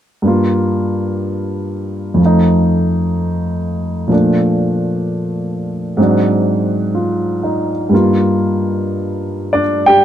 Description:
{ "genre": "solo jazz", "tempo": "62 BPM", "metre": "4/4", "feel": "swing 66% on 8ths, rubato", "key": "G minor", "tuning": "A4 = 440 Hz", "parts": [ { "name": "warm upright piano", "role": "solo", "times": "0.2-10.0 s", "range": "F2 to G5", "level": "-13 LUFS", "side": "equal", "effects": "none" } ], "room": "light reverb", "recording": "dark, warm production", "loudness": "-13 LUFS", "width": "side -10 dB against mid", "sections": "0.2-7.9 A section; 7.9-10.0 B section", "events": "none", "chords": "0.2 Gm7; 2.2 F7; 4.1 Bbmaj7; 6.0 Ab7#11; 7.9 Gm7", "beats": "| 0.24 1.22 2.19 3.15 | 4.10 5.04 5.99 6.94 | 7.92 8.89 9.86" }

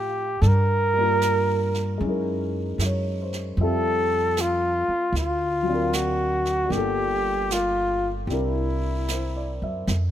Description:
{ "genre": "jazz ballad", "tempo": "76 BPM", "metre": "4/4", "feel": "swing 68% on 8ths", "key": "unclear", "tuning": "A4 = 440 Hz", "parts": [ { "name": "warm flugelhorn", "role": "melody", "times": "0.0-9.6 s", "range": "E4 to Bb4", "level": "-24 LUFS", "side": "equal", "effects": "none" }, { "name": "warm concert grand piano", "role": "accompaniment", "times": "0.0-10.0 s", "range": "F3 to E#5", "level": "-29 LUFS", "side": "left 2 dB", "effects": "none" }, { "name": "upright bass", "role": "bass", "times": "0.0-10.1 s", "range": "G1 to A2", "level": "-26 LUFS", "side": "equal", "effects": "none" }, { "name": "jazz brush drum kit", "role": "drums", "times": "0.4-10.1 s", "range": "brushed snare drum, hi-hat, snare drum", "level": "-34 LUFS", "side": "right 4 dB", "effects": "none" } ], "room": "little or no reverb", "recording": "minimal, uncompressed stereo recording", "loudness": "-21 LUFS", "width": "side -11 dB against mid", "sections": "0.0-9.9 A section", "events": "none", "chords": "0.4 Gm7; 2.0 Gb13; 3.6 Fmaj9; 5.1 D7alt; 6.7 Gm7; 8.3 C9", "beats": "| 0.43 1.21 2.00 2.79 | 3.57 4.36 5.14 5.92 | 6.71 7.49 8.28 9.08 | 9.87" }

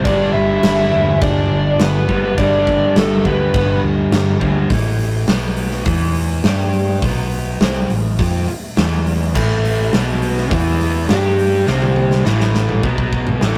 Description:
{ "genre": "hard rock", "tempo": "103 BPM", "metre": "4/4", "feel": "straight", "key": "A dorian", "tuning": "A4 = 440 Hz", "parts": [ { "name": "lead guitar through a small cranked amp", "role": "melody", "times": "0.0-3.8 s", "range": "A4 to E5", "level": "-21 LUFS", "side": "equal", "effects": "overdrive" }, { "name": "octave-fuzz lead guitar", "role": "second line", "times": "0.0-3.8 s", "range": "A3 to E4", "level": "-26 LUFS", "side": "equal", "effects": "distortion" }, { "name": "overdriven electric guitar", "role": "riff", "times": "0.0-4.7, 9.3-13.6 s", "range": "G2 to G4", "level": "-21 LUFS", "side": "equal", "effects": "none" }, { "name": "overdriven semi-hollow guitar", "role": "riff", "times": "0.0-13.6 s", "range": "G2 to G4", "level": "-24 LUFS", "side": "equal", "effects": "none" }, { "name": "hollow-body short-scale fingered electric bass", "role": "bass", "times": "0.0-13.6 s", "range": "E1 to G2", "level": "-22 LUFS", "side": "equal", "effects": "none" }, { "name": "huge arena drum kit", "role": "drums", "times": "0.0-13.6 s", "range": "crash cymbal, hi-hat, kick drum, snare drum, toms", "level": "-22 LUFS", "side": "equal", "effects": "none" } ], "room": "wet booth ambience, RT60 0.2 s", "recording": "rough rehearsal-room recording, tube saturation", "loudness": "-16 LUFS", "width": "mono", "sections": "0.0-4.7 A section; 4.7-13.6 B section", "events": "drum fill 11.7-13.6", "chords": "0.1 G; 4.7 A5; 5.3 B5; 5.9 E5; 6.4 G5; 7.0 B5; 7.6 Am; 8.8 E5; 9.4 A5; 9.9 B5; 10.5 E5; 11.1 G5; 11.7 C5; 12.3 A5; 12.8 B5", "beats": "| 0.06 0.64 1.22 1.80 | 2.38 2.96 3.54 4.12 | 4.70 5.28 5.86 6.44 | 7.03 7.61 8.19 8.77 | 9.35 9.93 10.52 11.10 | 11.68 12.26 12.84 13.42" }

